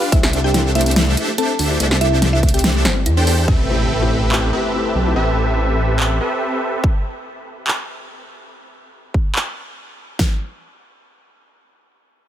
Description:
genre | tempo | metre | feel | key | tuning
future bass | 143 BPM | 4/4 | half-time | unclear | A4 = 441 Hz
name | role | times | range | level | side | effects
thumb-piano-like synth pluck | arpeggios | 0.0-3.4 s | A3 to C5 | -27 LUFS | left 5 dB | chorus, sidechain pumping, digital delay
supersaw chords | riff | 0.0-6.8 s | C4 to G5 | -21 LUFS | right 1 dB | sidechain pumping, low-pass filter, digital delay
mallet-like synth pluck | melody | 0.1-2.8 s | E4 to A5 | -24 LUFS | right 1 dB | chorus, sidechain pumping, digital delay
wide detuned saw bass | bass | 0.1-6.2 s | G1 to E2 | -18 LUFS | equal | chorus, sidechain pumping
big-room dance drum kit | drums | 0.1-3.6, 6.8-10.3 s | kick drum, snare drum | -16 LUFS | equal | none
big-room dance drum kit | drums | 0.1-9.4 s | handclaps, hi-hat, snare drum | -22 LUFS | equal | none
impact | sound effects | 3.5-5.2 s | none | -26 LUFS | equal | none
felt-muted upright piano | accompaniment | 3.7-5.1 s | A3 to G4 | -26 LUFS | left 4 dB | vintage 12-bit sampler grit, sidechain pumping, digital delay
room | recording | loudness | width
light reverb | none | -15 LUFS | side -11 dB against mid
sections
0.0-3.5 A section; 3.5-10.2 B section; 10.2-12.3 C section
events
drop 0.0-3.5; kick drops out 2.6-3.5; impact 3.5-5.2; filter sweep on supersaw synth 3.5-6.8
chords
0.1 C69; 3.5 Am9; 6.8 N.C.

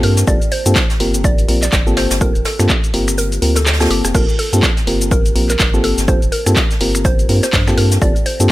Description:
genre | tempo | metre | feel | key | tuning
deep house | 124 BPM | 4/4 | swing 58% on 16ths | G minor | A4 = 439 Hz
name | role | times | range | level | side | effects
mallet-like synth pluck | melody | 0.0-8.5 s | G4 to D5 | -23 LUFS | right 1 dB | chorus, cassette tape, digital delay
mellow FM electric piano | stabs | 0.0-8.5 s | Bb3 to Bb4 | -19 LUFS | left 1 dB | chorus, sidechain pumping, digital delay
round analog bass | bass | 0.0-8.5 s | F1 to G2 | -17 LUFS | equal | sidechain pumping
punchy analog drum machine | drums | 0.0-8.5 s | crash cymbal, finger snaps, handclaps, hi-hat, rim click, shaker | -19 LUFS | equal | none
soft brush drum kit | drums | 0.0-8.4 s | hi-hat, snare drum | -26 LUFS | right 2 dB | high-pass filter on hats, high-pass filter on snare, high-pass filter on room
electronic kick drum | drums | 0.3-8.1 s | none | -16 LUFS | equal | none
room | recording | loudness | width
little or no reverb | none | -12 LUFS | side -17 dB against mid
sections
0.0-8.5 A section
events
kick drops out 3.2-4.1; drum fill 3.7-4.1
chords
0.0 Gm11

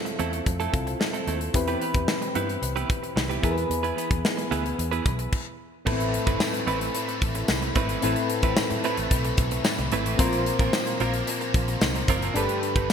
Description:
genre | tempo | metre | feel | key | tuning
1980s-style pop | 111 BPM | 4/4 | straight | A minor | A4 = 440 Hz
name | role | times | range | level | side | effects
soft electric-piano-like synth keys | accompaniment | 0.0-12.9 s | G2 to C5 | -29 LUFS | left 3 dB | chorus
direct-recorded clean electric guitar | riff | 0.1-12.9 s | F3 to B4 | -30 LUFS | right 6 dB | lush chorus
modern studio drum kit | drums | 0.1-12.9 s | crash cymbal, hi-hat, kick drum, snare drum, tambourine | -26 LUFS | equal | gated reverb
vintage muted fingered electric bass | bass | 0.2-12.9 s | F#1 to A2 | -30 LUFS | equal | none
distorted electric guitar | accompaniment | 5.9-12.9 s | G2 to Bb3 | -32 LUFS | equal | overdrive, ensemble chorus
room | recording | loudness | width
moderate lush hall reverb, RT60 2.0 s, studio ambience | bright 1980s-style digital production | -23 LUFS | side -7 dB against mid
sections
0.0-5.9 A section; 5.9-12.9 B section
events
stop 5.3-5.9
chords
0.0 Fmaj7; 1.5 Cmaj7/E; 3.4 E; 5.9 Amadd9; 10.2 Bbsus2; 12.4 Gadd9

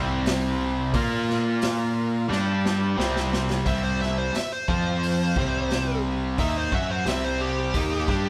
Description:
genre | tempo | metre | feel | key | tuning
blues rock power trio and southern rock | 88 BPM | 4/4 | straight | unclear | A4 = 439 Hz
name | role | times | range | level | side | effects
overdriven tonewheel organ | sustained chords | 0.0-3.7 s | D4 to F5 | -41 LUFS | equal | none
cranked stack guitar | riff | 0.0-8.3 s | C3 to Bb4 | -28 LUFS | equal | overdrive
modern bright fingered electric bass | bass | 0.0-8.3 s | C2 to Bb2 | -32 LUFS | equal | none
raw garage drum kit | drums | 0.3-8.2 s | hi-hat, kick drum, snare drum | -32 LUFS | equal | none
bluesy overdriven lead guitar | melody | 3.7-8.3 s | G4 to E5 | -31 LUFS | equal | distortion
room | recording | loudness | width
moderate stone room reverb, RT60 1.1 s | band playing live in one room | -25 LUFS | mono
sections
0.0-3.7 A section; 3.7-8.3 B section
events
drum fill 2.3-3.7; lead electric guitar solo 3.7-8.3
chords
0.0 C; 0.9 Bb5; 2.3 G5; 3.0 C; 3.7 C5; 4.7 F5; 5.4 C5

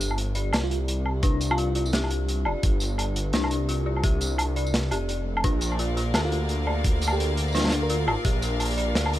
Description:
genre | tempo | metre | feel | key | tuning
half-time drum and bass | 171 BPM | 4/4 | swing 60% on 16ths, half-time | G minor | A4 = 442 Hz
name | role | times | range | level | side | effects
dark detuned synth bell | arpeggios | 0.0-9.2 s | D4 to D5 | -31 LUFS | left 3 dB | chorus, tremolo, ping-pong delay
dark detuned saw bass | bass | 0.0-9.2 s | F1 to D2 | -26 LUFS | equal | none
crunchy breakbeat drum kit | drums | 0.0-9.2 s | hi-hat, snare drum, tambourine, woodblock | -28 LUFS | equal | none
bell-like FM electric piano | melody | 0.6-2.0, 6.2-8.1 s | F4 to Bb4 | -35 LUFS | right 2 dB | none
electronic kick drum | drums | 1.2-8.3 s | none | -24 LUFS | equal | none
bright chamber string section | sustained chords | 5.4-9.2 s | Bb3 to F5 | -32 LUFS | left 2 dB | sidechain pumping
room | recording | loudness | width
studio reverb | none | -22 LUFS | side -14 dB against mid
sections
0.0-9.2 A section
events
none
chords
0.0 G5; 5.4 Bb

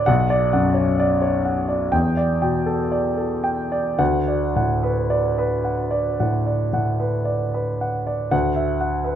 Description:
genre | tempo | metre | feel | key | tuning
classical, impressionist solo piano | 53-66 BPM | 4/4 | rubato | unclear | A4 = 440 Hz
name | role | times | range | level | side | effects
warm grand piano | solo | 0.0-9.2 s | B1 to G5 | -18 LUFS | equal | none
room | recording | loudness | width
moderate recital hall reverb, RT60 1.4 s | close, detailed microphones | -19 LUFS | side -10 dB against mid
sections
0.0-8.3 A section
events
none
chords
0.1 Bmadd9; 1.9 Em7; 4.0 D6; 8.3 D69

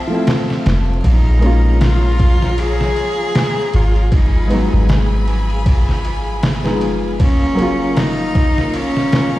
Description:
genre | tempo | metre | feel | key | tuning
trip hop | 78 BPM | 4/4 | swing 58% on 16ths | Bb phrygian | A4 = 440 Hz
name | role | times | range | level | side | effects
rich cello | melody | 0.0-9.4 s | C4 to Ab4 | -21 LUFS | equal | tape echo
clear studio string section | sustained chords | 0.0-9.4 s | F3 to Cb6 | -28 LUFS | left 1 dB | none
backwards swelling texture | texture | 0.0-9.4 s | F3 to F4 | -28 LUFS | left 4 dB | built-in reverb
felt-muted upright piano | accompaniment | 0.1-9.4 s | Db3 to Ab4 | -22 LUFS | equal | tremolo, tape echo
trip hop sampler-style drum kit | drums | 0.3-9.3 s | kick drum, ride cymbal, snare drum | -18 LUFS | equal | overdrive
soft 808-style bass | bass | 0.7-9.4 s | F1 to Bb1 | -16 LUFS | equal | none
room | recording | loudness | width
small room ambience | played on a big sound system in a bare room, stone room reverb, vinyl crackle | -13 LUFS | side -16 dB against mid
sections
0.0-9.4 A section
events
none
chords
0.0 Fmaj7; 1.0 Bbm7; 4.1 Abm7; 7.2 Gbmaj7

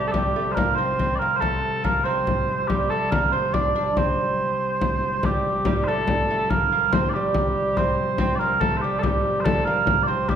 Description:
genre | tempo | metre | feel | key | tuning
medieval dance | 95 BPM (dotted quarters) | 6/8 | straight | unclear | A4 = 440 Hz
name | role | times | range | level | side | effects
mellow small bagpipes | melody | 0.0-10.4 s | G4 to D5 | -23 LUFS | right 2 dB | none
lute | second line | 0.0-10.4 s | G3 to D4 | -28 LUFS | right 2 dB | none
pipe organ, foundations | drone | 0.0-10.4 s | C3 to G3 | -30 LUFS | equal | none
frame drum | percussion | 0.1-10.4 s | none | -25 LUFS | left 2 dB | none
room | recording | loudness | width
wet recital hall reverb, RT60 1.7 s | heard from further back in the room | -20 LUFS | side -8 dB against mid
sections
0.0-5.2 A section; 5.2-10.4 B section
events
none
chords
none

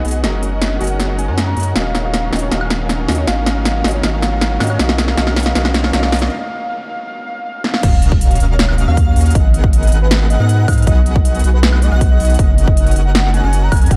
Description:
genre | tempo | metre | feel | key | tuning
future bass | 158 BPM | 4/4 | half-time | Eb minor | A4 = 445 Hz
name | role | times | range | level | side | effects
warm velvety synth lead | melody | 0.0-14.0 s | Cb5 to Bb5 | -27 LUFS | equal | chorus, sidechain pumping, delay
felt-muted upright piano | accompaniment | 0.0-6.3 s | Eb3 to F5 | -29 LUFS | equal | none
shimmering ambient pad | sustained chords | 0.0-14.0 s | Eb3 to F5 | -34 LUFS | equal | none
dense compressed supersaw | riff | 0.0-14.0 s | B3 to Ab5 | -28 LUFS | equal | vintage 12-bit sampler grit, sidechain pumping, low-pass filter
saturated sub bass | bass | 0.0-14.0 s | Eb1 to Ab2 | -18 LUFS | equal | sidechain pumping
big-room dance drum kit | drums | 0.0-14.0 s | crash cymbal, hi-hat, snare drum, woodblock | -22 LUFS | equal | none
riser and impact | sound effects | 4.4-9.4 s | none | -27 LUFS | equal | none
airy dreamy lead | arpeggios | 7.8-14.0 s | F5 to Ab5 | -32 LUFS | equal | chorus, sidechain pumping, tape echo
electronic kick drum | drums | 7.8-14.0 s | none | -15 LUFS | equal | overdrive
room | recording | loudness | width
digital ambience | dark, warm production | -14 LUFS | mono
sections
0.0-7.8 A section; 7.8-14.0 B section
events
build-up 0.0-7.8; drum fill 0.0-6.3, 7.6; break 6.3-7.8; drop 7.8-14.0; impact 7.8-9.4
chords
0.2 Gb6; 1.8 Ebm9; 3.3 Abm9; 4.8 B6; 6.3 N.C.; 7.8 Ebm9; 9.4 Abm9; 10.9 B6; 12.4 Gb6

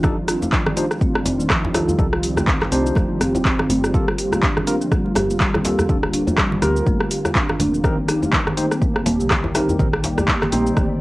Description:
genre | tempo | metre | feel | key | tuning
afro house | 123 BPM | 4/4 | swing 58% on 16ths | G minor | A4 = 441 Hz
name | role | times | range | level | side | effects
warm analog pad | sustained chords | 0.0-11.0 s | D3 to D5 | -26 LUFS | equal | chorus, sidechain pumping, cassette tape
folk marimba with soft mallets | arpeggios | 0.0-10.9 s | D3 to G4 | -23 LUFS | equal | sidechain pumping, cassette tape, analog delay
tine electric piano | stabs | 0.0-11.0 s | Bb3 to C5 | -27 LUFS | equal | medium stereo tremolo, sidechain pumping, cassette tape, analog delay
woody FM bass | bass | 0.0-10.9 s | D1 to D2 | -28 LUFS | equal | sidechain pumping
deep house drum kit | drums | 0.0-10.9 s | cabasa, handclaps, hi-hat, rim click | -22 LUFS | equal | overdrive
electronic kick drum | drums | 0.0-10.9 s | none | -22 LUFS | equal | overdrive
congas | percussion | 0.0-10.9 s | none | -29 LUFS | right 1 dB | none
djembe | percussion | 0.4-10.3 s | none | -26 LUFS | left 1 dB | none
room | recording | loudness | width
moderate studio reverb, RT60 0.5 s | home recording on cassette | -16 LUFS | side -20 dB against mid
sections
0.0-11.0 A section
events
none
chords
0.0 F7sus2; 3.9 Gm7; 7.8 Eb6

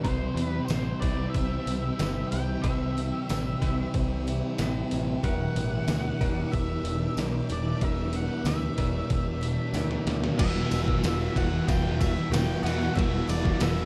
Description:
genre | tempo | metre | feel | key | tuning
rock, shoegaze and dream pop | 93 BPM | 4/4 | straight | E minor | A4 = 440 Hz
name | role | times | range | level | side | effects
octave-fuzz lead guitar | melody | 0.0-13.9 s | B4 to G5 | -40 LUFS | equal | distortion, tape echo
picked twelve-string acoustic guitar | arpeggios | 0.0-13.9 s | E3 to G4 | -42 LUFS | equal | none
direct-recorded clean electric guitar | riff | 0.0-13.9 s | C3 to C5 | -36 LUFS | equal | reverse reverb
thick fuzz guitar | riff | 0.0-13.9 s | E2 to C4 | -34 LUFS | equal | distortion, subtle chorus
overdriven picked electric bass | bass | 0.0-13.9 s | E1 to E2 | -33 LUFS | equal | none
detuned 8-bit digital drum machine | drums | 0.0-13.8 s | crash cymbal, hi-hat, kick drum, ride cymbal, snare drum | -32 LUFS | equal | none
phased string machine | sustained chords | 0.1-13.9 s | E4 to D6 | -45 LUFS | equal | ensemble chorus, phaser
tambourine | percussion | 0.7-13.8 s | none | -48 LUFS | equal | none
distorted electric guitar | riff | 10.4-13.9 s | E2 to E3 | -38 LUFS | equal | overdrive
room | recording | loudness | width
light reverb | dark, warm production | -28 LUFS | mono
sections
0.0-10.4 A section; 10.4-13.9 B section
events
drum fill 9.8-10.4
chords
0.0 C; 5.2 Em7; 10.4 Emadd9

